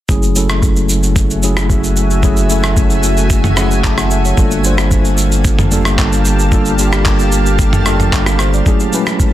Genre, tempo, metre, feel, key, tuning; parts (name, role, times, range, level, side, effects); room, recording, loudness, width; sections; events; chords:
amapiano; 112 BPM; 4/4; straight; A4 = 440 Hz
mellow tine electric piano; accompaniment; 0.1-9.3 s; F#3 to A5; -17 LUFS; left 1 dB; medium stereo tremolo
granular cloud pad; sustained chords; 0.9-9.3 s; A3 to A5; -20 LUFS; right 1 dB; built-in reverb
saturated sub bass; bass; 0.1-8.6 s; F#1 to G1; -15 LUFS; equal
dusty soul sampler-style drum kit; drums; 0.1-9.3 s; handclaps, kick drum, rim click, shaker, toms; -14 LUFS; equal
digital ambience; dense, heavily limited modern master; -10 LUFS; side -13 dB against mid
0.1-9.3 A section
0.1 F#m9; 4.4 Gm9; 8.7 F#m9